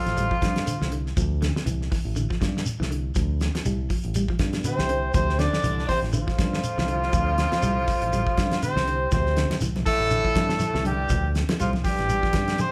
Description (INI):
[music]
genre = afrobeat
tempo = 121 BPM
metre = 4/4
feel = swing 56% on 16ths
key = D minor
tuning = A4 = 440 Hz
[part]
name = clear trumpet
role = melody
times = 0.0-0.9, 4.7-12.7 s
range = F4 to D5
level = -29 LUFS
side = equal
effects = none
[part]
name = bright bass trombone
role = second line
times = 0.0-0.9, 4.6-12.7 s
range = F2 to D3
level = -38 LUFS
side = equal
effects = none
[part]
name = growling tenor saxophone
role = second line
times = 0.0-0.9, 4.7-12.7 s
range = F3 to D4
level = -35 LUFS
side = equal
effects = none
[part]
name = clean electric guitar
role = arpeggios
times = 0.0-12.7 s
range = D3 to G3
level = -34 LUFS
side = equal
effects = none
[part]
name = fingered electric bass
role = bass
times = 0.1-12.6 s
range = A1 to G2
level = -30 LUFS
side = equal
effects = none
[part]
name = damped 70s drum kit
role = drums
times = 0.1-12.7 s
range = hi-hat, kick drum, snare drum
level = -30 LUFS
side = equal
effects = none
[part]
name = shekere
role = percussion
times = 0.2-12.7 s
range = none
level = -35 LUFS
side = equal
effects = none
[part]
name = congas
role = percussion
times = 9.1-12.7 s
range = none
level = -34 LUFS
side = equal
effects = none
[sound]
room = moderate large studio reverb, RT60 1.1 s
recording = band playing live in one room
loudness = -24 LUFS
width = mono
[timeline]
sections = 0.0-12.7 A section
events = none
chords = 0.0 Dm7